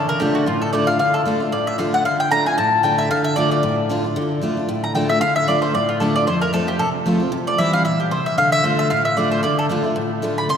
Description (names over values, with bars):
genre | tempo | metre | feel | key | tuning
bluegrass | 227 BPM | 4/4 | swing 56% on 8ths | D minor | A4 = 440 Hz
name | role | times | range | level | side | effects
mandolin | melody | 0.0-10.6 s | F4 to C6 | -19 LUFS | equal | none
picked steel-string acoustic guitar | accompaniment | 0.0-10.6 s | F2 to F4 | -20 LUFS | equal | none
room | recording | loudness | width
wet cathedral reverb, RT60 4.1 s | recorded in a church or concert hall | -16 LUFS | side -7 dB against mid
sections
0.0-4.2 A section; 4.2-10.6 B section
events
mandolin solo 4.2-10.6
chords
0.0 Dm; 6.3 F; 7.3 C; 8.4 Dm